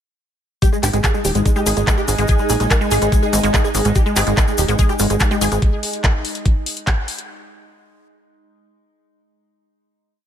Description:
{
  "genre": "psychedelic trance",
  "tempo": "144 BPM",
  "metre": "4/4",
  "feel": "straight",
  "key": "unclear",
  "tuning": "A4 = 440 Hz",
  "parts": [
    { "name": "supersaw stab", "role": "melody", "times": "0.6-5.6 s", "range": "G#3 to A#4", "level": "-23 LUFS", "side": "right 1 dB", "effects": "phaser, cassette tape, sidechain pumping, tape echo" },
    { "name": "evolving wavetable pad", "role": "sustained chords", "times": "1.2-5.7 s", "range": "G#3 to D#4", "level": "-27 LUFS", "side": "left 1 dB", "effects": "chorus, built-in reverb, phaser, sidechain pumping" },
    { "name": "wide unison pluck", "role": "riff", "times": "0.6-5.6 s", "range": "G#3 to G#4", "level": "-24 LUFS", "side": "equal", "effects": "auto-pan, sidechain pumping, tape echo" },
    { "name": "drum and bass drum kit", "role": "drums", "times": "0.6-7.3 s", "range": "handclaps, hi-hat", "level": "-23 LUFS", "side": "left 1 dB", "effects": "none" },
    { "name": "electronic kick drum", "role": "drums", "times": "0.6-7.0 s", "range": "none", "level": "-16 LUFS", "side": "equal", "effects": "none" },
    { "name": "tube shaker", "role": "percussion", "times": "0.6-5.6 s", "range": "none", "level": "-27 LUFS", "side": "left 3 dB", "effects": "none" },
    { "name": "airy breathy pad", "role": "texture", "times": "1.0-5.6 s", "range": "G#4 to G#5", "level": "-28 LUFS", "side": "right 3 dB", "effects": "chorus, phaser, sidechain pumping" },
    { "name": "plucky analog bass", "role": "bass", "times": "0.8-5.6 s", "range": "D#1 to A#1", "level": "-19 LUFS", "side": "equal", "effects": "none" }
  ],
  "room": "little or no reverb",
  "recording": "none",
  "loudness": "-15 LUFS",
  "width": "side -9 dB against mid",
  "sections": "0.6-7.3 groove",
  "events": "none",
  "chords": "0.6 G#5"
}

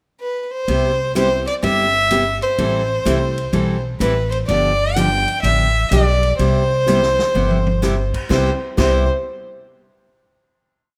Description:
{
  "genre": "country, western swing",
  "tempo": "126 BPM",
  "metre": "4/4",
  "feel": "swing 66% on 8ths",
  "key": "C major",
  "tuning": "A4 = 440 Hz",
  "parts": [
    { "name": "rich fiddle", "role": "melody", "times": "0.2-9.1 s", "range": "B4 to G5", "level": "-21 LUFS", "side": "equal", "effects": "none" },
    { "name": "picked steel-string acoustic guitar", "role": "accompaniment", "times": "0.7-9.0 s", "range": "C3 to A4", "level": "-24 LUFS", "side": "equal", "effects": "none" },
    { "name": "upright bass", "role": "bass", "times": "0.7-9.1 s", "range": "G1 to C2", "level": "-23 LUFS", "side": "equal", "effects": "none" },
    { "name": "vintage drum kit", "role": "drums", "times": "0.7-8.9 s", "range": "crash cymbal, hi-hat, kick drum, ride cymbal, snare drum, toms", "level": "-30 LUFS", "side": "equal", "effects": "none" },
    { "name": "warm upright piano", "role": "accompaniment", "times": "1.1-9.1 s", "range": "G3 to G4", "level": "-28 LUFS", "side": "equal", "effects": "none" }
  ],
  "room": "moderate echo chamber reverb, RT60 1.7 s",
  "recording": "none",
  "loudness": "-17 LUFS",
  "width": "mono",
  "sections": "0.0-0.7 pickup bar; 0.7-8.3 A section; 8.3-10.2 final chord",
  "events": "drum fill 6.9-7.8",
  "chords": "0.0 N.C.; 0.7 Cmaj7; 2.6 Am7; 4.5 G7; 6.4 Cmaj7"
}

